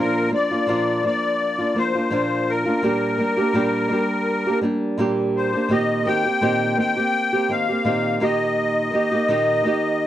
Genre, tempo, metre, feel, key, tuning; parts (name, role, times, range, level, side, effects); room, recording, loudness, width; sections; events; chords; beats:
pop; 84 BPM; 4/4; swing 55% on 16ths; Bb major; A4 = 436 Hz
musette accordion; melody; 0.0-10.1 s; Bb4 to G5; -22 LUFS; left 3 dB
flamenco guitar; accompaniment; 0.0-10.1 s; Bb2 to G4; -21 LUFS; right 1 dB
little or no reverb; dry, close 1970s-style studio recording; -18 LUFS; side -12 dB against mid
0.0-10.1 A section
0.0 Bb; 2.8 Gm/Bb; 5.7 Cm7/Bb; 8.2 Eb/Bb
0.68 1.40 2.12 | 2.83 3.55 4.26 4.98 | 5.70 6.42 7.13 7.85 | 8.57 9.29 10.00